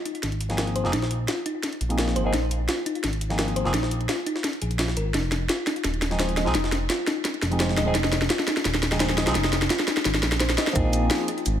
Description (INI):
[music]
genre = liquid drum and bass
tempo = 171 BPM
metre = 4/4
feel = straight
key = unclear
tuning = A4 = 440 Hz
[part]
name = thumb-piano-like synth pluck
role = arpeggios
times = 0.0-11.4 s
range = Eb4 to Eb5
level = -30 LUFS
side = left 1 dB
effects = chorus, vintage 12-bit sampler grit, tape echo
[part]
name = garage drum kit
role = drums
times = 0.1-11.5 s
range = hi-hat, shaker, snare drum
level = -26 LUFS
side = equal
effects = overdrive, small room ambience
[part]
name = jungle sampler-style drum kit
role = drums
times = 0.1-11.5 s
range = hi-hat, snare drum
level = -32 LUFS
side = equal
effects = high-pass filter on hats, small room ambience, high-pass filter on snare
[part]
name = smooth gliding synth bass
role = bass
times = 0.2-11.6 s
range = Eb1 to C2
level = -26 LUFS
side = equal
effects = tube saturation
[part]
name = barky tine electric piano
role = accompaniment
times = 0.5-3.7, 6.1-11.3 s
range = F3 to Ab4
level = -29 LUFS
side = equal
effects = phaser, tape echo
[part]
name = electronic kick drum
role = drums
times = 10.8 s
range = none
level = -25 LUFS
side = equal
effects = overdrive, small room ambience
[sound]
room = moderate echo chamber reverb, RT60 2.0 s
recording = echo-heavy mix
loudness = -22 LUFS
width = side -10 dB against mid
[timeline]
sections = 0.0-10.8 A section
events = build-up 0.0-10.8; drum fill 0.0-10.8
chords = 0.0 Bb9sus4; 5.1 Fm7; 10.8 Bb9sus4